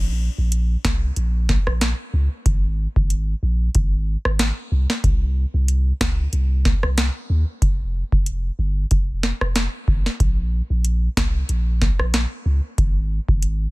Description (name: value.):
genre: dancehall.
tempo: 93 BPM.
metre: 4/4.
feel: swing 56% on 16ths.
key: unclear.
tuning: A4 = 440 Hz.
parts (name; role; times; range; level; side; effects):
punchy sub bass; bass; 0.0-13.7 s; F1 to Eb2; -20 LUFS; equal; none.
booming analog drum machine; drums; 0.5-13.6 s; hi-hat, kick drum, rim click, snare drum; -20 LUFS; equal; none.
room: little or no reverb.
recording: dense, heavily limited modern master.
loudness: -18 LUFS.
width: side -22 dB against mid.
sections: 0.0-13.7 A section.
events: none.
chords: none.